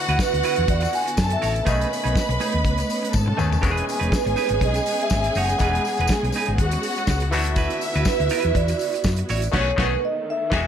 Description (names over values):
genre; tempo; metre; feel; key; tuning
disco; 122 BPM; 4/4; swing 56% on 16ths; E major; A4 = 440 Hz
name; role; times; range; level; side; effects
warm studio violin section; second line; 0.0-10.7 s; E4 to B5; -28 LUFS; left 1 dB; none
overdriven clav; accompaniment; 0.0-10.7 s; D#3 to G#4; -31 LUFS; left 6 dB; auto-wah
warm studio string section; sustained chords; 0.0-10.7 s; D3 to G#4; -30 LUFS; right 2 dB; none
clean electric guitar; accompaniment; 0.1-10.7 s; A3 to E5; -30 LUFS; right 7 dB; none
hollow-body short-scale fingered electric bass; bass; 0.1-10.7 s; E1 to G#2; -24 LUFS; left 1 dB; none
damped 70s drum kit; drums; 0.1-10.7 s; crash cymbal, hi-hat, kick drum, snare drum, toms; -25 LUFS; equal; none
vibraphone with soft mallets; melody; 0.2-10.7 s; B4 to G#5; -26 LUFS; right 3 dB; tape echo
tambourine; percussion; 0.2-9.5 s; none; -37 LUFS; left 10 dB; none
room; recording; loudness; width
light reverb, small room ambience; none; -19 LUFS; side -9 dB against mid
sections
0.0-10.7 A section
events
drum fill 3.1-3.6; band accent 9.5-10.7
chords
0.0 D69; 1.7 B13; 3.6 Emaj7; 7.3 D69; 9.5 B13